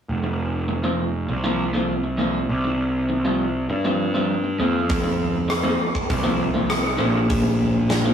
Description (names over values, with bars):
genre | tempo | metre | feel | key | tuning
quiet-loud alternative rock | 100 BPM | 4/4 | straight | unclear | A4 = 435 Hz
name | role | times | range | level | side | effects
fuzz picked electric bass | bass | 0.1-8.1 s | F1 to G2 | -22 LUFS | equal | overdrive
electric guitar through a small old amp | arpeggios | 0.2-8.1 s | D3 to F4 | -24 LUFS | equal | none
huge arena drum kit | drums | 4.9-8.0 s | hi-hat, kick drum, rim click, snare drum | -23 LUFS | equal | none
room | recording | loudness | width
light reverb | rough rehearsal-room recording, tube saturation, small room ambience | -20 LUFS | side -8 dB against mid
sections
0.1-8.1 A section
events
none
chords
0.1 Fsus4; 2.5 Csus4; 4.6 Fsus4; 7.0 Bbadd9